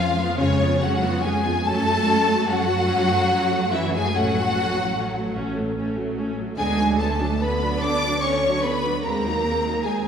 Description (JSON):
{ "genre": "classical, slow romantic movement for string orchestra", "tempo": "49 BPM (dotted quarters)", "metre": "6/8", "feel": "rubato", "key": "F# minor", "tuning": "A4 = 440 Hz", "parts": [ { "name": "warm symphonic violin section", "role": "melody", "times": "0.0-10.1 s", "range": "C#5 to D6", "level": "-24 LUFS", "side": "left 2 dB", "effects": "none" }, { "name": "warm symphonic violin section", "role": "second line", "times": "0.0-10.1 s", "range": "C#4 to D5", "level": "-26 LUFS", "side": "left 2 dB", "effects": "none" }, { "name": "rich symphonic viola section", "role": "accompaniment", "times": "0.0-10.1 s", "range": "D3 to F#4", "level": "-26 LUFS", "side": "equal", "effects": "none" }, { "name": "warm symphonic cello section", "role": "bass", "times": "0.0-10.1 s", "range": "C#3 to D4", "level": "-26 LUFS", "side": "right 2 dB", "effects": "none" }, { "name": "warm symphonic double bass section", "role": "bass", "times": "0.0-10.1 s", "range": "A1 to F#2", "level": "-28 LUFS", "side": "right 2 dB", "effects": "none" } ], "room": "wet scoring stage reverb, RT60 2.0 s", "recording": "heard from further back in the room", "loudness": "-19 LUFS", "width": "side -7 dB against mid", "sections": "0.0-10.1 A section", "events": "none", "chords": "0.0 C#7/E#; 1.7 F#m; 4.1 F#m/A; 6.6 Bm/D; 9.0 G#7/D#", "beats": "0.38 | 1.67 2.89 | 4.15 5.34 | 6.56 7.79 | 9.02" }